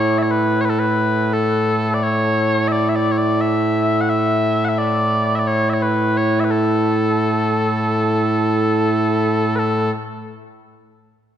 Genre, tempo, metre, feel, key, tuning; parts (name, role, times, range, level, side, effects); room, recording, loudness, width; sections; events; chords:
scottish traditional, Scottish pipe music; 87 BPM; 4/4; straight; A major; A4 = 439 Hz
mellow small bagpipes; solo; 0.0-9.9 s; A2 to F#5; -16 LUFS; equal
wet concert hall reverb, RT60 2.1 s; dark, warm production; -16 LUFS; side -9 dB against mid
0.0-9.6 A section; 9.6-11.4 B section